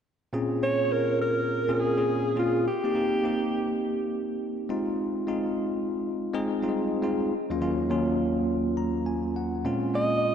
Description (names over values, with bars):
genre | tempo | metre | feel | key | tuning
R&B | 103 BPM | 4/4 | swing 64% on 16ths | Bb minor | A4 = 440 Hz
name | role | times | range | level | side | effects
bell-like tine electric piano | accompaniment | 0.3-10.3 s | Eb2 to Bb5 | -26 LUFS | equal | medium stereo tremolo
dark alto saxophone | melody | 0.6-3.8, 10.0-10.3 s | F4 to Eb5 | -27 LUFS | right 1 dB | tape echo
room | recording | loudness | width
wet lush hall reverb, RT60 2.7 s | dreamy mix soaked in reverb | -25 LUFS | side -8 dB against mid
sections
0.3-10.3 A section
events
tine electric piano fill 8.5-9.6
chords
0.3 Bbm7; 2.7 Cm7; 4.7 Fm7; 7.3 Ebm7; 9.6 Bbm7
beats
| 0.33 0.91 1.49 2.08 | 2.66 3.24 3.82 4.41 | 4.99 5.57 6.15 6.74 | 7.32 7.90 8.48 9.07 | 9.65 10.23